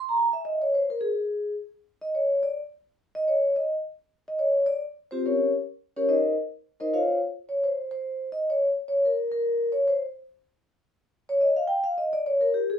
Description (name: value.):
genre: jazz.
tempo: 214 BPM.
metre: 4/4.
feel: swing 59% on 8ths.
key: Eb mixolydian.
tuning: A4 = 441 Hz.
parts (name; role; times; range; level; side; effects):
vibraphone with soft mallets; solo; 0.0-12.8 s; C4 to Bb5; -23 LUFS; left 1 dB; none.
room: moderate studio ambience, RT60 0.5 s.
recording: minimal, uncompressed stereo recording.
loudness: -23 LUFS.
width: side -9 dB against mid.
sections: 0.0-4.9 A section; 4.9-12.8 B section.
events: vibraphone solo 4.9-12.8.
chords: 0.0 N.C.; 4.9 Eb13; 7.2 N.C..